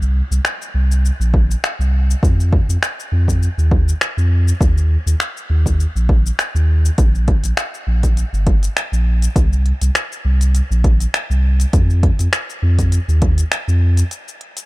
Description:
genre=organic downtempo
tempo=101 BPM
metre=4/4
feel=swing 54% on 16ths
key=unclear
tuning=A4 = 440 Hz
part: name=warm sub bass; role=bass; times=0.0-14.0 s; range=G1 to F2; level=-14 LUFS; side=equal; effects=sidechain pumping
part: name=organic electronic drum kit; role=drums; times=0.0-14.7 s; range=finger snaps, hi-hat, shaker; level=-24 LUFS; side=left 1 dB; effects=overdrive
part: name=electronic kick drum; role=drums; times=1.3-13.3 s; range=none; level=-16 LUFS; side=equal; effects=none
room=little or no reverb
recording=dark, warm production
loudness=-14 LUFS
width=side -20 dB against mid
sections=0.0-14.7 A section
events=break 14.1-14.7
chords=none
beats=0.45 1.04 1.64 | 2.23 2.82 3.42 4.01 | 4.61 5.20 5.79 6.39 | 6.98 7.58 8.17 8.76 | 9.36 9.95 10.55 11.14 | 11.73 12.33 12.92 13.52 | 14.11

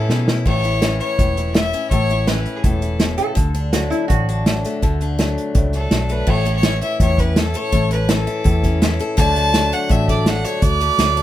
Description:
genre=honky-tonk and classic country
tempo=165 BPM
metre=4/4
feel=straight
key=A major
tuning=A4 = 436 Hz
part: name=clear fiddle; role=melody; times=0.0-3.2, 5.8-11.2 s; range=G#4 to A5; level=-22 LUFS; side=equal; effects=none
part: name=picked steel-string acoustic guitar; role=accompaniment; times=0.0-11.2 s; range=A2 to A4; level=-23 LUFS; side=left 3 dB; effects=none
part: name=vintage muted fingered electric bass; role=bass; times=0.0-11.2 s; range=E1 to B2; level=-20 LUFS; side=equal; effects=none
part: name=unplugged drum kit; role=drums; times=0.1-11.2 s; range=crash cymbal, hi-hat, kick drum, snare drum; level=-19 LUFS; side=equal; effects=none
part: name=lap resonator guitar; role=second line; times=3.2-5.1 s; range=E4 to A4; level=-24 LUFS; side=right 1 dB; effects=none
room=light reverb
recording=close, detailed microphones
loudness=-15 LUFS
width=side -13 dB against mid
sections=0.5-6.3 A section; 6.3-11.2 B section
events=drum fill 0.0-0.5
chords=0.5 A; 3.4 D; 6.3 A; 9.2 D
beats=0.10 | 0.46 0.82 1.19 1.55 | 1.92 2.28 2.64 3.01 | 3.37 3.73 4.10 4.46 | 4.82 5.19 5.55 5.91 | 6.28 6.64 7.00 7.36 | 7.72 8.09 8.45 8.81 | 9.17 9.54 9.90 10.26 | 10.62 10.98

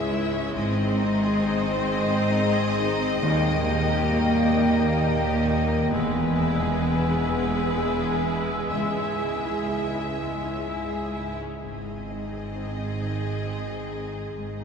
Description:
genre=cinematic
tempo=60-69 BPM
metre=3/4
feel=rubato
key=unclear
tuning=A4 = 439 Hz
part: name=clear symphonic violin section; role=melody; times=0.0-14.6 s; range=B4 to Fb5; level=-33 LUFS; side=left 4 dB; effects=none
part: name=clear symphonic violin section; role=second line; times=0.0-14.6 s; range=G3 to Ab4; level=-35 LUFS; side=left 2 dB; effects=none
part: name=rich symphonic viola section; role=accompaniment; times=0.0-14.6 s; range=G#3 to C4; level=-34 LUFS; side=right 2 dB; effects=none
part: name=warm grand piano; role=accompaniment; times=0.0-14.6 s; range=Db2 to Ab4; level=-32 LUFS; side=left 2 dB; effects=none
part: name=dark French horn section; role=sustained chords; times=0.0-11.3 s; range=G3 to Fb4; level=-33 LUFS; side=left 2 dB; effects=none
part: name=concert harp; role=arpeggios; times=0.0-14.6 s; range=Ab2 to Bb5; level=-34 LUFS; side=left 3 dB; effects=none
part: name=clear symphonic cello section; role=bass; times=0.0-14.6 s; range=Db2 to Ab2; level=-29 LUFS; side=right 2 dB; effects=none
part: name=rich symphonic double bass section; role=bass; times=0.0-14.6 s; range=E1 to Eb2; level=-30 LUFS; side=right 2 dB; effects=none
part: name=clear oboe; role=second line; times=0.6-11.3 s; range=Eb5 to E5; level=-35 LUFS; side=right 2 dB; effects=none
part: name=mellow flute section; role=second line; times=0.6-11.3 s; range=G5 to C6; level=-34 LUFS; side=left 2 dB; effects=none
part: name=timpani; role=percussion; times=3.2-4.5 s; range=Eb3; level=-34 LUFS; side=left 2 dB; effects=none
room=wet cathedral reverb, RT60 5.9 s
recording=none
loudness=-22 LUFS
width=side -6 dB against mid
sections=0.0-11.6 A section; 11.6-14.6 B section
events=none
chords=0.0 Dbm; 0.5 Ab; 3.2 Eb; 5.9 E; 8.7 Dbm; 11.6 Ab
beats=| 0.55 1.45 2.33 | 3.23 4.12 5.01 | 5.92 6.83 7.76 | 8.72 9.70 10.68 | 11.63 12.55 13.47 | 14.37

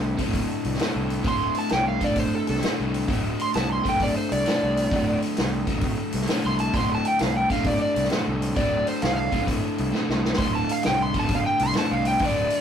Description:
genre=blues rock power trio and southern rock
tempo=131 BPM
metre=4/4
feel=swing 67% on 8ths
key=D minor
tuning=A4 = 439 Hz
part: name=overdriven electric guitar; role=riff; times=0.0-12.6 s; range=D2 to D3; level=-26 LUFS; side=left 2 dB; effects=none
part: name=fuzz fingered electric bass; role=bass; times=0.0-12.5 s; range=D1 to C2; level=-28 LUFS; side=equal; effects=overdrive
part: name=vintage drum kit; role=drums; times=0.2-12.6 s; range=hi-hat, kick drum, snare drum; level=-28 LUFS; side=equal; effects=none
part: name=overdriven slide guitar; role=melody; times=1.3-12.6 s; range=A4 to C6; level=-25 LUFS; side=right 1 dB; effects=none
room=light reverb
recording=rough rehearsal-room recording, warm saturation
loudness=-21 LUFS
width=side -8 dB against mid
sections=0.0-12.6 A section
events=electric slide guitar solo 0.0-12.6; drum fill 9.9-10.4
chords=0.0 D5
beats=0.34 0.80 | 1.26 1.72 2.17 2.63 | 3.09 3.54 4.00 4.46 | 4.91 5.37 5.83 6.28 | 6.74 7.20 7.65 8.11 | 8.57 9.02 9.48 9.94 | 10.39 10.85 11.30 11.76 | 12.22

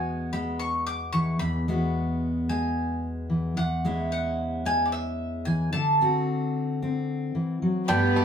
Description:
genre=acoustic folk duo or small band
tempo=111 BPM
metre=4/4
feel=straight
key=unclear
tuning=A4 = 438 Hz
part: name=bowl-back mandolin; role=melody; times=0.0-8.2 s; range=D5 to D6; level=-28 LUFS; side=equal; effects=none
part: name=fingerpicked steel-string acoustic guitar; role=accompaniment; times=0.0-8.2 s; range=E2 to G4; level=-26 LUFS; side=left 1 dB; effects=none
part: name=pedal steel guitar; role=second line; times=7.9-8.2 s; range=B3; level=-25 LUFS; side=right 4 dB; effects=none
part: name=warm symphonic string section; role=sustained chords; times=7.9-8.2 s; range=A3 to B4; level=-29 LUFS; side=left 1 dB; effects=none
part: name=bluegrass banjo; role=arpeggios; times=7.9-8.2 s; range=D3 to A3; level=-29 LUFS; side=right 5 dB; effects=none
room=wet studio reverb, RT60 0.6 s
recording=band playing live in one room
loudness=-24 LUFS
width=side -8 dB against mid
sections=0.0-7.9 A section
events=none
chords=0.0 Eadd9; 3.6 C#m/E; 5.7 D7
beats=0.33 0.87 | 1.41 1.95 2.49 3.03 | 3.57 4.11 4.65 5.19 | 5.73 6.27 6.81 7.35 | 7.89

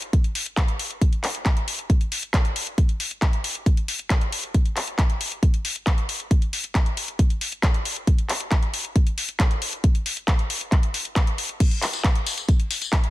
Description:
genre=trance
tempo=136 BPM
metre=4/4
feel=straight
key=none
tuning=none
part: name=house drum kit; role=drums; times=0.0-13.1 s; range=crash cymbal, handclaps, hi-hat, tambourine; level=-26 LUFS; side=left 1 dB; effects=none
part: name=electronic kick drum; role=drums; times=0.1-13.0 s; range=none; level=-19 LUFS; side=equal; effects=none
room=little or no reverb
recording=dense, heavily limited modern master, faint mains hum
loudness=-20 LUFS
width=side -16 dB against mid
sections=0.0-13.1 A section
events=none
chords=none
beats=0.13 0.57 | 1.01 1.46 1.90 2.34 | 2.78 3.22 3.66 4.10 | 4.54 4.99 5.43 5.87 | 6.31 6.75 7.19 7.63 | 8.07 8.52 8.96 9.40 | 9.84 10.28 10.72 11.16 | 11.60 12.04 12.49 12.93

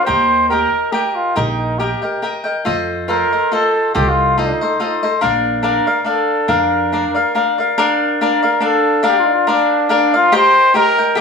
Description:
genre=mexican folk, mariachi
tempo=141 BPM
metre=3/4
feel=swing 55% on 8ths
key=Bb major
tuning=A4 = 443 Hz
part: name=mellow trumpet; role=melody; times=0.0-11.2 s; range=D4 to C5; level=-15 LUFS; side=right 1 dB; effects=none
part: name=cavaquinho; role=accompaniment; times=0.0-11.2 s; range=D4 to G5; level=-16 LUFS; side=left 3 dB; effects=none
part: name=upright bass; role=bass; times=0.1-7.0 s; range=Bb1 to F2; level=-23 LUFS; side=right 1 dB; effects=none
room=moderate studio reverb, RT60 0.9 s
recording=band playing live in one room, small room ambience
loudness=-13 LUFS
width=side -5 dB against mid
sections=0.0-7.8 A section; 7.8-11.2 A section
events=none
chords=0.1 Eb; 2.7 F7; 5.2 Bb; 10.3 Eb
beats=| 0.09 0.51 0.94 | 1.36 1.79 2.23 | 2.66 3.09 3.52 | 3.95 4.37 4.80 | 5.23 5.65 6.07 | 6.50 6.92 7.35 | 7.78 8.21 8.64 | 9.06 9.48 9.90 | 10.32 10.74 11.16

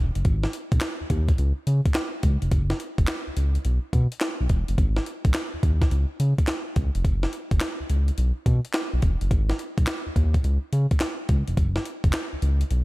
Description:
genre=R&B, new jack swing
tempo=106 BPM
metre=4/4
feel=swing 66% on 16ths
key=unclear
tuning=A4 = 441 Hz
part: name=smooth synth bass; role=bass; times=0.0-12.8 s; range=E1 to C#3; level=-22 LUFS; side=equal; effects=none
part: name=breakbeat sampler-style drum kit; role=drums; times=0.2-12.8 s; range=handclaps, hi-hat, kick drum, snare drum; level=-24 LUFS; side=equal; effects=none
room=digital ambience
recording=none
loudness=-22 LUFS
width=side -20 dB against mid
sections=0.0-12.8 A section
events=none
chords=none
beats=| 0.25 0.82 1.39 1.95 | 2.52 3.08 3.65 4.21 | 4.78 5.35 5.91 6.48 | 7.04 7.61 8.18 8.74 | 9.31 9.88 10.44 11.01 | 11.57 12.14 12.71

